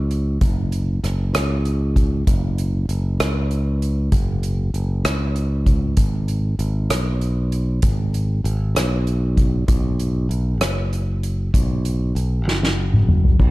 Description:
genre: six-eight pop ballad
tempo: 65 BPM (dotted quarters)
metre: 6/8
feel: straight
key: unclear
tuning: A4 = 440 Hz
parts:
  - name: modern bright fingered electric bass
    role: bass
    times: 0.0-13.5 s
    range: F#1 to C#2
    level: -20 LUFS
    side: equal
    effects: none
  - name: soft-mallet drum kit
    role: drums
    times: 0.1-13.5 s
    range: crash cymbal, hi-hat, kick drum, rim click, snare drum, toms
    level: -20 LUFS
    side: equal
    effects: none
room: little or no reverb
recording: dark, warm production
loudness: -18 LUFS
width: side -19 dB against mid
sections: 0.0-13.4 A section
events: drum fill 12.5-13.4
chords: none

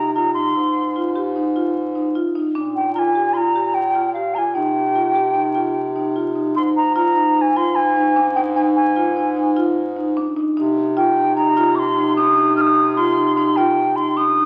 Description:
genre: contemporary instrumental, chamber music in an uneven meter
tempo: 150 BPM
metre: 5/4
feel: straight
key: unclear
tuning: A4 = 435 Hz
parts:
  - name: wooden flute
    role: melody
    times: 0.0-14.5 s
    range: F5 to F6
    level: -20 LUFS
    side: equal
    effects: none
  - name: marimba with medium mallets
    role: arpeggios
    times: 0.0-14.5 s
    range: D4 to G4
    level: -22 LUFS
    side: equal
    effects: none
  - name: clear bass clarinet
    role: bass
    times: 0.0-14.5 s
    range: Ab2 to C3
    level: -27 LUFS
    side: equal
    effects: none
room: moderate scoring stage reverb, RT60 1.6 s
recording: very old 78 rpm record, vinyl crackle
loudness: -18 LUFS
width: mono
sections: 0.0-6.6 A section; 6.6-14.5 B section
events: none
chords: 0.0 Cm; 0.6 Ab; 2.6 Bb7(no3); 4.6 Cm; 6.6 Ab5; 10.6 Cm

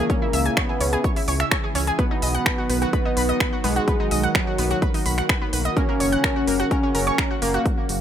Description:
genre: melodic techno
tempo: 127 BPM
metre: 4/4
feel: straight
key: unclear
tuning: A4 = 440 Hz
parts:
  - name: fat analog lead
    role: melody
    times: 0.0-7.7 s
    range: F#3 to C#4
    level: -25 LUFS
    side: equal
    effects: phaser, sidechain pumping, digital delay
  - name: lush unison pad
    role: sustained chords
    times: 0.0-8.0 s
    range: C#3 to F#4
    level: -28 LUFS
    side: equal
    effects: chorus, sidechain pumping
  - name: analog pluck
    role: arpeggios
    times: 0.0-7.6 s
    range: A#3 to G#6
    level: -27 LUFS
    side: right 1 dB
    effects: chorus, sidechain pumping, digital delay
  - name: round analog bass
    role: bass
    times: 0.0-8.0 s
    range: F#1 to C#2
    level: -25 LUFS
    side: equal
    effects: sidechain pumping
  - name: electronic kick drum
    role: drums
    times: 0.1-7.8 s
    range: none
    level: -24 LUFS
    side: equal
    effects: none
  - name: techno drum kit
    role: drums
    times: 0.1-8.0 s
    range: finger snaps, hi-hat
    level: -26 LUFS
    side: equal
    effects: sidechain pumping on hats, sidechain pumping on cymbals
room: light reverb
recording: none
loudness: -19 LUFS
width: side -9 dB against mid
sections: 0.0-8.0 A section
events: none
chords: 0.0 C#m; 2.0 B; 5.8 F#

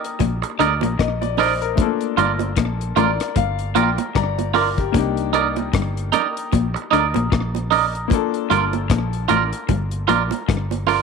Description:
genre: lovers rock reggae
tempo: 76 BPM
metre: 4/4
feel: swing 58% on 16ths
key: G minor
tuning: A4 = 439 Hz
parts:
  - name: clear concert grand piano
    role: accompaniment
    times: 0.0-11.0 s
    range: A3 to D6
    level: -26 LUFS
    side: left 13 dB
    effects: none
  - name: deep reggae drum kit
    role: drums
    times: 0.0-11.0 s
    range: hi-hat, kick drum, rim click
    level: -24 LUFS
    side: left 2 dB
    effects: slapback echo
  - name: electric guitar through a small old amp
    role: riff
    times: 0.2-10.7 s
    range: G2 to D3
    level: -25 LUFS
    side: left 13 dB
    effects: wide subtle chorus
  - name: fingered electric bass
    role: bass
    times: 0.2-11.0 s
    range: G1 to D2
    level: -24 LUFS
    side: equal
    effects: none
  - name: bongos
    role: percussion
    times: 0.2-11.0 s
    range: none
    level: -29 LUFS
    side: right 13 dB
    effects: none
  - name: twangy electric guitar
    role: stabs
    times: 0.4-11.0 s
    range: Eb4 to D5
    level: -20 LUFS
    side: right 11 dB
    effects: slapback echo
room: moderate spring reverb, RT60 2.5 s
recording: 1960s-style stereo with parts hard left and right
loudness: -17 LUFS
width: side -5 dB against mid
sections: 0.0-11.0 A section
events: grand piano fill 2.6-4.9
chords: 0.0 Cm9; 1.8 Gm7; 4.9 Cm9; 8.1 Gm7

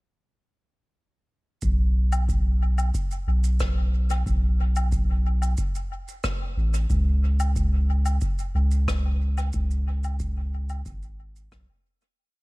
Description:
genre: ambient dub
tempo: 91 BPM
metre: 4/4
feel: straight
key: unclear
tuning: A4 = 439 Hz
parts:
  - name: soft dub sub bass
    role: bass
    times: 1.6-11.7 s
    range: G#1 to C#2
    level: -22 LUFS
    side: equal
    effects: none
  - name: electronic kick drum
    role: drums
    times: 1.6-11.7 s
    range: none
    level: -30 LUFS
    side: equal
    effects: none
  - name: shaker, woodblock and rim click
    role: drums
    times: 1.6-12.1 s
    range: none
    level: -34 LUFS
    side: left 1 dB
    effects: dub echo
room: little or no reverb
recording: echo-heavy mix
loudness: -22 LUFS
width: side -22 dB against mid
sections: 1.6-12.2 groove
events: fade-out 8.7-12.2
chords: none

